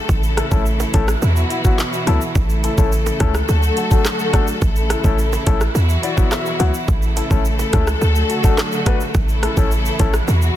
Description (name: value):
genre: dancehall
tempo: 106 BPM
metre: 4/4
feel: straight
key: unclear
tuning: A4 = 440 Hz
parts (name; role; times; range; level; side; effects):
- clear studio string section; sustained chords; 0.0-10.6 s; B2 to A4; -22 LUFS; equal; sidechain pumping
- short 808-style bass; bass; 0.1-10.5 s; A1 to E2; -18 LUFS; equal; none
- island pop drum kit; drums; 0.1-10.6 s; handclaps, hi-hat, kick drum, rim click, shaker; -19 LUFS; right 1 dB; none
- bongos; percussion; 0.1-10.4 s; none; -29 LUFS; right 8 dB; none
- warm grand piano; accompaniment; 0.4-10.1 s; F#3 to F#5; -24 LUFS; left 6 dB; none
room: small room ambience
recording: dense, heavily limited modern master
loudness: -15 LUFS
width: side -12 dB against mid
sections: 0.0-10.6 A section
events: grand piano fill 5.8-6.9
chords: 0.1 A; 1.2 Esus2; 2.4 A; 3.5 D; 4.6 A; 5.8 Esus2; 6.9 A; 8.0 D; 9.1 A